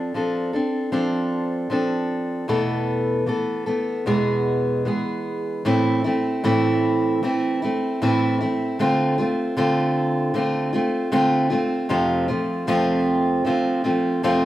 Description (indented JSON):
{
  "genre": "pop",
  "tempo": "77 BPM",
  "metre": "4/4",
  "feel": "straight",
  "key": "A minor",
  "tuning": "A4 = 440 Hz",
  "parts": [
    { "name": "fingerpicked steel-string acoustic guitar", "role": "solo", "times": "0.0-14.4 s", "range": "E2 to A4", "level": "-19 LUFS", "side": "equal", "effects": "none" }
  ],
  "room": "moderate large studio reverb, RT60 1.1 s",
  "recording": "band playing live in one room",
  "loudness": "-19 LUFS",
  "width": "side -14 dB against mid",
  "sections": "0.0-5.7 A section; 5.7-14.4 B section",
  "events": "none",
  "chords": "0.0 Dm7/F; 2.5 Esus4; 4.1 E; 5.7 Am; 8.8 Dm7; 11.9 F"
}